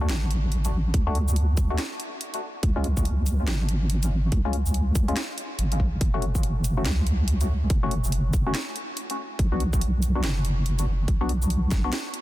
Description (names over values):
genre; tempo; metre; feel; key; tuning
deep dubstep; 142 BPM; 4/4; swing 61% on 16ths, half-time; F# harmonic minor; A4 = 440 Hz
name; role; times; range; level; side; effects
percussive organ stab; stabs; 0.0-11.9 s; G#3 to F#4; -33 LUFS; left 3 dB; chorus, cassette tape, dub echo
deep soft wobble bass; bass; 0.0-11.9 s; F#1 to D2; -23 LUFS; equal; chorus
garage drum kit; drums; 0.1-12.2 s; hi-hat, shaker, snare drum; -33 LUFS; right 1 dB; none
electronic kick drum; drums; 0.9-11.8 s; none; -24 LUFS; equal; none
room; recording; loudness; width
little or no reverb; dense, heavily limited modern master; -22 LUFS; side -16 dB against mid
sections
0.0-12.2 A section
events
none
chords
0.0 D; 2.6 C#; 6.0 F#m; 9.4 Bm